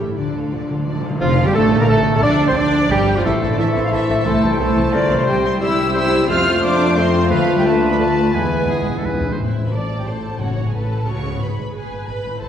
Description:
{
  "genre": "classical, dramatic, fast romantic movement for symphony orchestra",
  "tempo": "177 BPM",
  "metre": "3/4",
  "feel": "straight",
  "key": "D minor, A minor from 5.3 s",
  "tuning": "A4 = 440 Hz",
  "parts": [
    { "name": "rich symphonic violin section", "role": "melody", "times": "0.0-12.5 s", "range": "C5 to F6", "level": "-27 LUFS", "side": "left 2 dB", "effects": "none" },
    { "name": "dark clarinet", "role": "second line", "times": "0.0-9.2 s", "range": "D4 to D5", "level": "-27 LUFS", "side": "equal", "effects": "none" },
    { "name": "warm symphonic violin section", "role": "second line", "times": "0.0-12.5 s", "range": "E4 to E5", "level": "-29 LUFS", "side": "left 1 dB", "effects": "none" },
    { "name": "rich symphonic viola section", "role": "accompaniment", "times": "0.0-12.5 s", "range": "E3 to D5", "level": "-25 LUFS", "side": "right 2 dB", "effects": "none" },
    { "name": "concert harp", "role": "arpeggios", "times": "0.0-12.5 s", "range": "G#2 to C6", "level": "-25 LUFS", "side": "left 3 dB", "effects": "none" },
    { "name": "rich symphonic double bass section", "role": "bass", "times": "0.0-12.5 s", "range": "E1 to F2", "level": "-23 LUFS", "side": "right 2 dB", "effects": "none" },
    { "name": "warm symphonic cello section", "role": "bass", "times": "0.0-12.5 s", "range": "E2 to F4", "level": "-24 LUFS", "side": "right 2 dB", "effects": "none" },
    { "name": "timpani", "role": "percussion", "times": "0.2-1.2, 8.3-10.9 s", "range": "E2 to D3", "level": "-26 LUFS", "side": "equal", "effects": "none" },
    { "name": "bright concert flute", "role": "second line", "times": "1.2-9.2 s", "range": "C5 to F6", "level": "-27 LUFS", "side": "left 2 dB", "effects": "none" },
    { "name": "bright oboe", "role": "second line", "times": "1.2-9.4 s", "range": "F4 to D5", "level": "-27 LUFS", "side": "right 1 dB", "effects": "none" },
    { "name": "mellow bassoon", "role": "accompaniment", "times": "1.2-9.2 s", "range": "F3 to D4", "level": "-25 LUFS", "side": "right 1 dB", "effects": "none" },
    { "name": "mellow French horn section", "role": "sustained chords", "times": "1.2-9.2 s", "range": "F3 to G4", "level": "-22 LUFS", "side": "left 3 dB", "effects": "none" },
    { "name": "warm trumpet", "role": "stabs", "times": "1.2-9.2 s", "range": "F4 to D5", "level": "-26 LUFS", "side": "right 1 dB", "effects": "none" },
    { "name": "tam-tam", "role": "percussion", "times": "1.2-2.5 s", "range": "none", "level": "-30 LUFS", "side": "left 1 dB", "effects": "none" }
  ],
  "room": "wet scoring stage reverb, RT60 1.6 s",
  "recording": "heard from further back in the room",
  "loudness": "-15 LUFS",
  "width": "side -9 dB against mid",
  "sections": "0.0-1.2 A section; 1.2-9.4 B section; 9.4-12.5 A section",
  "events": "timpani fill 0.2-1.2, 8.3-9.4; band accent 1.2-1.6",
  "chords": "0.2 Dm; 1.2 Dm/F; 2.2 Dm; 3.3 Am; 4.3 Am/C; 5.3 C; 6.3 F; 7.3 Bm7b5/D; 8.3 E; 9.4 Am/E; 10.4 B7/F#; 11.4 E/G#",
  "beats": "| 0.18 0.53 0.87 | 1.21 1.55 1.90 | 2.24 2.58 2.92 | 3.25 3.59 3.93 | 4.26 4.60 4.93 | 5.27 5.61 5.95 | 6.28 6.62 6.97 | 7.31 7.65 7.99 | 8.34 8.69 9.05 | 9.40 9.73 10.07 | 10.41 10.74 11.07 | 11.41 11.74 12.08 | 12.41"
}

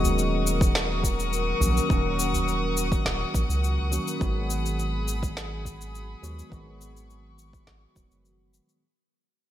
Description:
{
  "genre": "organic downtempo",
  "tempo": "104 BPM",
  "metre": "4/4",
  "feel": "straight",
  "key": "G# minor",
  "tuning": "A4 = 444 Hz",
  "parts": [
    { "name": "tine electric piano", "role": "accompaniment", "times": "0.0-8.8 s", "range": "D#3 to F#4", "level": "-32 LUFS", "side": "right 2 dB", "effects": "phaser, sidechain pumping, low-pass filter, ping-pong delay" },
    { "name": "warm studio string section", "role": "sustained chords", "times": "0.0-8.8 s", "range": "G#4 to D#6", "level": "-31 LUFS", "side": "left 3 dB", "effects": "sidechain pumping" },
    { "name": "round analog bass", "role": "bass", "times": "0.0-8.6 s", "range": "D#1 to D#2", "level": "-29 LUFS", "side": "equal", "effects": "none" },
    { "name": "electronic shaker and snare drum", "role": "drums", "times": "0.0-8.8 s", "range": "none", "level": "-31 LUFS", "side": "left 1 dB", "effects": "none" },
    { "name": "udu", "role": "percussion", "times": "0.0-3.9 s", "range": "none", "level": "-30 LUFS", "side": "right 1 dB", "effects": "none" },
    { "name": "electronic kick drum", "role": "drums", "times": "0.6-8.1 s", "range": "none", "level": "-25 LUFS", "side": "equal", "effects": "overdrive" }
  ],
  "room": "light reverb, small room ambience",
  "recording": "none",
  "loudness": "-23 LUFS",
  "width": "side -12 dB against mid",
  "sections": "0.0-8.8 A section",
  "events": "fade-out 0.0-8.8; filter sweep on tine electric piano 0.0-8.8",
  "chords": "0.0 D#m7; 4.2 G#m7",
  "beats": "0.17 0.75 1.32 | 1.90 2.48 3.05 3.63 | 4.21 4.78 5.36 5.94 | 6.51 7.09 7.67 8.25"
}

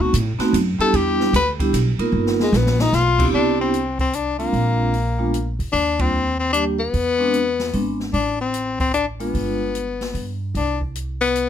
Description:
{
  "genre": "jazz, small-group swing and bop",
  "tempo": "150 BPM",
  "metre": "3/4",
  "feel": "swing 65% on 8ths",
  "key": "C major",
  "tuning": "A4 = 440 Hz",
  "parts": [
    { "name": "bright tenor saxophone", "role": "melody", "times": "0.0-11.5 s", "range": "Ab3 to B4", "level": "-21 LUFS", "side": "left 5 dB", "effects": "none" },
    { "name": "vibraphone with medium mallets", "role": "accompaniment", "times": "0.0-9.7 s", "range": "G3 to Bb4", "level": "-22 LUFS", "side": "right 3 dB", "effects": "none" },
    { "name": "upright bass", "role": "bass", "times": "0.0-11.5 s", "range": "G1 to A2", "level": "-23 LUFS", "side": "right 1 dB", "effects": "none" },
    { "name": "open jazz drum kit", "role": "drums", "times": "0.1-11.5 s", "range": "crash cymbal, hi-hat, kick drum, ride cymbal, snare drum", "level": "-28 LUFS", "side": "equal", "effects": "none" }
  ],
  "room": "little or no reverb",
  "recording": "close, detailed microphones",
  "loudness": "-18 LUFS",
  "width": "side -9 dB against mid",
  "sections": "0.0-3.3 A section; 3.3-11.5 B section",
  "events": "tenor saxophone solo 0.0-3.3; drum fill 2.1-2.9; band accent 5.9",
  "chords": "0.0 B7b9; 0.9 Em7; 2.1 G7alt; 3.3 Cmaj9; 4.5 Bb7; 5.7 Ebmaj7; 6.9 E7b13; 8.1 Am; 9.3 G7b9; 10.5 Cmaj7sus2",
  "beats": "0.13 0.53 | 0.93 1.33 1.73 | 2.13 2.53 2.93 | 3.33 3.73 4.13 | 4.53 4.93 5.33 | 5.73 6.13 6.54 | 6.94 7.34 7.74 | 8.14 8.54 8.94 | 9.34 9.74 10.14 | 10.54 10.94 11.34"
}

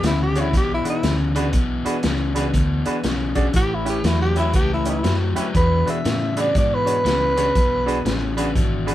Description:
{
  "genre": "electric blues shuffle",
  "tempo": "120 BPM",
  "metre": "4/4",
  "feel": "swing 64% on 8ths",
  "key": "E mixolydian",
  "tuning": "A4 = 440 Hz",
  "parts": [
    { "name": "growling tenor saxophone", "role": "melody", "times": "0.0-8.2 s", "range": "E4 to E5", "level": "-22 LUFS", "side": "equal", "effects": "none" },
    { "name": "overdriven electric guitar", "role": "riff", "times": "0.0-8.9 s", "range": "E2 to F#3", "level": "-25 LUFS", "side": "left 3 dB", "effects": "none" },
    { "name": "vintage muted fingered electric bass", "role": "bass", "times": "0.0-8.9 s", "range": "G#1 to A2", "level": "-24 LUFS", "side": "equal", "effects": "none" },
    { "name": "vintage drum kit", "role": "drums", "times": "0.0-8.9 s", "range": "hi-hat, kick drum, snare drum", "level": "-23 LUFS", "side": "equal", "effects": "none" },
    { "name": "bright upright piano", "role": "accompaniment", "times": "0.3-8.9 s", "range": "C#4 to D5", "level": "-26 LUFS", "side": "right 2 dB", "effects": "none" }
  ],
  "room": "moderate studio reverb, RT60 0.6 s",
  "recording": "band playing live in one room",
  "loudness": "-18 LUFS",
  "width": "side -13 dB against mid",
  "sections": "0.0-8.9 A section",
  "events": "none",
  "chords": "0.0 E9; 3.5 A9; 5.5 E9",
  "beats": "0.04 0.54 1.04 | 1.54 2.04 2.54 3.04 | 3.54 4.04 4.54 5.04 | 5.55 6.05 6.55 7.05 | 7.55 8.05 8.55"
}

